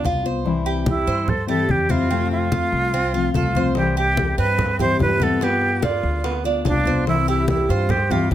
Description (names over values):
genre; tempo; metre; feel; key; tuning
latin, Cuban son and guajira; 145 BPM; 4/4; straight; C major; A4 = 440 Hz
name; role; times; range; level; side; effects
jazz flute; melody; 0.0-8.3 s; D4 to C5; -22 LUFS; right 2 dB; none
fingerpicked steel-string acoustic guitar; accompaniment; 0.0-8.3 s; C3 to F4; -24 LUFS; left 5 dB; none
Cuban tres; arpeggios; 0.0-8.3 s; B3 to C5; -26 LUFS; right 5 dB; none
upright bass; bass; 0.0-8.3 s; C2 to G2; -24 LUFS; equal; none
congas; percussion; 0.0-8.3 s; none; -25 LUFS; left 1 dB; none
bongos; percussion; 3.8-8.3 s; none; -32 LUFS; left 5 dB; none
room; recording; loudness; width
light reverb; close, detailed microphones; -18 LUFS; side -12 dB against mid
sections
0.0-8.3 A section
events
none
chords
0.5 C; 2.1 F; 3.8 C; 5.4 G7; 7.1 C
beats
0.04 | 0.45 0.86 1.28 1.69 | 2.10 2.52 2.93 3.34 | 3.76 4.17 4.58 5.00 | 5.41 5.83 6.24 6.65 | 7.07 7.48 7.90 8.31